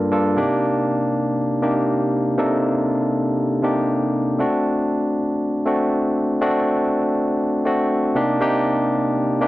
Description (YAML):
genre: disco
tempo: 119 BPM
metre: 4/4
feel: swing 56% on 16ths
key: unclear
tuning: A4 = 439 Hz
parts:
  - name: barky tine electric piano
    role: solo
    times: 0.0-9.5 s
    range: G2 to Bb4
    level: -18 LUFS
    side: equal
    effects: overdrive
room: light reverb, digital ambience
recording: none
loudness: -18 LUFS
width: side -17 dB against mid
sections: 0.4-8.4 A section; 8.4-9.5 B section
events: none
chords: 0.4 Cm7; 4.4 D7; 8.2 Cm7